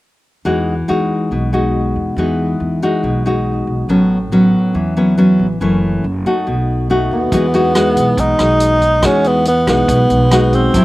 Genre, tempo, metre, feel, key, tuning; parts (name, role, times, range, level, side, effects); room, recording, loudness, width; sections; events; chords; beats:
bossa nova; 140 BPM; 4/4; straight; E major; A4 = 441 Hz
nylon-string guitar; accompaniment; 0.5-10.8 s; F#2 to F#4; -14 LUFS; left 1 dB; slapback echo
upright bass; bass; 0.5-10.8 s; F#1 to E2; -19 LUFS; right 1 dB
mellow tenor saxophone; melody; 7.1-10.8 s; B3 to D#4; -14 LUFS; right 1 dB
vintage drum kit; drums; 7.3-10.8 s; hi-hat, kick drum, rim click; -21 LUFS; right 1 dB
little or no reverb; recorded outdoors, with no room sound; -12 LUFS; side -18 dB against mid
0.5-7.3 A section; 7.3-10.8 B section
0.5 Emaj9; 3.9 A69; 5.6 F#m7; 6.5 B7; 7.3 Emaj9
| 0.45 0.88 1.31 1.74 | 2.17 2.60 3.03 3.46 | 3.89 4.32 4.75 5.18 | 5.61 6.04 6.47 6.90 | 7.32 7.75 8.18 8.61 | 9.04 9.47 9.89 10.32 | 10.75